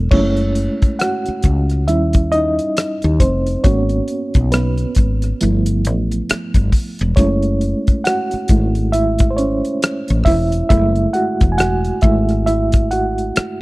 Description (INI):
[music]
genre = R&B, neo-soul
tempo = 68 BPM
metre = 4/4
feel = swing 60% on 16ths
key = unclear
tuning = A4 = 442 Hz
[part]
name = reed electric piano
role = accompaniment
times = 0.0-13.6 s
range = F3 to G#5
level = -18 LUFS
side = right 1 dB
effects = overdrive, fast tremolo
[part]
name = woody fretless electric bass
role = bass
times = 0.0-13.4 s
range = E1 to D#2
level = -17 LUFS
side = equal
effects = none
[part]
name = cloth-damped thuddy drum kit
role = drums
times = 0.1-13.6 s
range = crash cymbal, hi-hat, kick drum, rim click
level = -15 LUFS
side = equal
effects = none
[sound]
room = small room ambience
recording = dry, close 1970s-style studio recording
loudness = -14 LUFS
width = side -21 dB against mid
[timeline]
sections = 0.1-13.6 A section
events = reed electric piano solo 0.1-13.6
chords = 0.1 F#m7; 1.9 D#7b9; 3.6 G#m7; 5.4 G13; 7.2 F#m7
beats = | 0.11 1.00 1.88 2.76 | 3.64 4.53 5.41 6.29 | 7.17 8.05 8.94 9.82 | 10.70 11.59 12.47 13.35